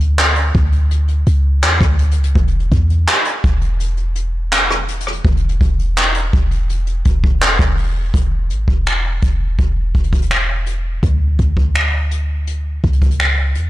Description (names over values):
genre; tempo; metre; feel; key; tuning
contemporary R&B; 83 BPM; 4/4; straight; unclear; A4 = 440 Hz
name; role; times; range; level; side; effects
clean 808-style bass; bass; 0.0-13.7 s; E1 to E2; -16 LUFS; equal; none
jazz brush drum kit; drums; 0.0-13.7 s; finger snaps, handclaps, hi-hat, kick drum, rim click; -16 LUFS; equal; none
room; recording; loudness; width
little or no reverb; blown-out, overdriven recording, overdrive; -13 LUFS; side -16 dB against mid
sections
0.0-8.1 A section; 8.1-13.7 B section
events
none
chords
none